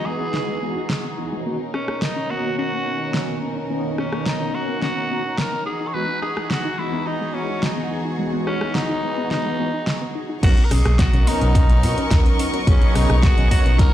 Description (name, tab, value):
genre	nu-disco, nu disco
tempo	107 BPM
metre	4/4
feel	straight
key	B major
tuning	A4 = 440 Hz
part	raspy tenor saxophone	melody	0.0-13.9 s	C#4 to C#5	-26 LUFS	equal	tape echo
part	mellow synth brass	accompaniment	0.0-13.9 s	D#3 to C#5	-26 LUFS	equal	chorus, sidechain pumping
part	warm studio string section	sustained chords	0.0-13.9 s	B2 to C#6	-30 LUFS	equal	sidechain pumping, low-pass filter
part	soft round pluck	arpeggios	0.1-13.9 s	G#3 to D#4	-31 LUFS	left 3 dB	chorus, sidechain pumping, tape echo
part	pop drum kit	drums	0.3-13.9 s	crash cymbal, hi-hat, rim click, snare drum	-26 LUFS	equal	none
part	fingered electric bass with an envelope filter	bass	10.4-13.9 s	B1 to B2	-18 LUFS	equal	none
part	electronic kick drum	drums	10.4-13.9 s	none	-16 LUFS	equal	none
room	light reverb, digital ambience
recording	played on a big sound system in a bare room, stone room reverb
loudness	-18 LUFS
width	side -12 dB against mid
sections	0.0-10.4 A section; 10.4-13.9 B section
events	filter sweep on synth arpeggio sound 0.0-10.4; drop 10.4-13.9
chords	0.0 Emaj9; 1.5 Bmaj9; 5.7 Emaj9; 10.4 Bmaj9